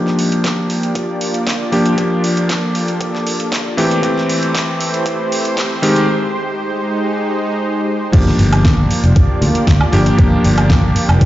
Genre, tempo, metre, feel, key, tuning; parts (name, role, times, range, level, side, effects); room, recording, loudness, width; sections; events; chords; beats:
nu-disco, nu disco; 117 BPM; 4/4; straight; G dorian; A4 = 440 Hz
clear electric grand piano; accompaniment; 0.0-11.3 s; Eb3 to G4; -16 LUFS; equal; low-pass filter, tape echo
lush unison pad; sustained chords; 0.0-11.3 s; Ab3 to D5; -20 LUFS; right 1 dB; chorus, sidechain pumping
pop drum kit; drums; 0.1-11.3 s; crash cymbal, hi-hat, snare drum, woodblock; -22 LUFS; equal; high-pass filter on hats, studio reverb, high-pass filter on perc, high-pass filter on snare, high-pass filter on cymbals
electronic kick drum; drums; 0.4-11.3 s; -13 LUFS; equal; overdrive, high-pass filter on kick, studio reverb, high-pass filter on room
fingered electric bass; bass; 8.1-11.2 s; F1 to D2; -13 LUFS; equal; sidechain pumping
moderate plate reverb, RT60 1.7 s; played on a big sound system in a bare room, large studio reverb, nothing above 7.6 kHz; -13 LUFS; side -14 dB against mid
0.0-8.1 A section; 8.1-11.3 B section
build-up 0.0-8.1; filter sweep on electric grand piano 0.0-8.1; break 6.1-8.1; drop 8.1-11.3
0.0 Gm7; 3.8 Am7; 5.8 Abmaj7; 8.1 Gm7
0.44 0.96 1.47 | 1.98 2.50 3.01 3.52 | 4.03 4.55 5.06 5.57 | 6.08 6.60 7.11 7.62 | 8.14 8.65 9.16 9.68 | 10.19 10.70 11.21